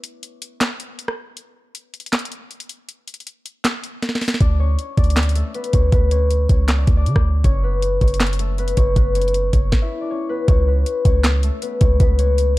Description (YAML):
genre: hip hop, trap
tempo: 158 BPM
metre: 4/4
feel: half-time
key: C# phrygian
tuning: A4 = 439 Hz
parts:
  - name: concert harp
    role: melody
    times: 0.0-1.3, 4.4-12.6 s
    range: A3 to E5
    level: -23 LUFS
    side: left 3 dB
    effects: low-pass filter, tape echo
  - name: trap drum kit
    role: drums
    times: 0.0-12.5 s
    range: handclaps, hi-hat, kick drum, rim click, snare drum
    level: -18 LUFS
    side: equal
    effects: none
  - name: warm 808-style bass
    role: bass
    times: 4.4-12.6 s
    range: F#1 to D3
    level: -18 LUFS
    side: equal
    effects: none
room: little or no reverb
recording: dark, warm production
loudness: -16 LUFS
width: side -19 dB against mid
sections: 0.0-10.5 A section; 10.5-12.6 B section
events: break 0.0-4.4; filter sweep on harp 0.0-4.4; drum fill 4.0-4.4; stop 9.7-10.5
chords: 0.0 N.C.; 4.4 D5; 7.4 F#m7; 10.5 C#m